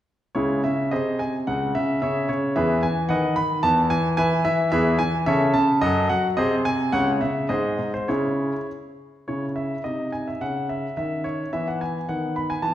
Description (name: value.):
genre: classical-period piano sonatina.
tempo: 108 BPM.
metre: 2/4.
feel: rubato.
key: C# minor.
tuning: A4 = 440 Hz.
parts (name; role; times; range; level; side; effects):
clear concert grand piano; solo; 0.3-12.7 s; C#2 to B5; -21 LUFS; equal; none.
room: wet recital hall reverb, RT60 1.4 s.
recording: heard from further back in the room.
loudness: -21 LUFS.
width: side -12 dB against mid.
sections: 0.4-9.3 A section; 9.3-12.7 A section.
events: none.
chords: 0.4 C#m; 0.9 G#/B#; 1.5 C#5; 2.6 E; 3.1 B/D#; 3.6 E5; 4.7 E; 5.3 A/C#; 5.8 D#dim/F#; 6.4 G#/B#; 6.9 N.C.; 7.5 G#; 8.1 C#m; 9.8 Cm; 10.4 C#madd9; 11.5 E; 12.1 B/D#.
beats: | 0.35 0.92 | 1.47 2.02 | 2.56 3.10 | 3.64 4.18 | 4.73 5.27 | 5.83 6.38 | 6.93 7.50 | 8.09 8.69 | 9.28 9.85 | 10.41 10.97 | 11.53 12.08 | 12.63.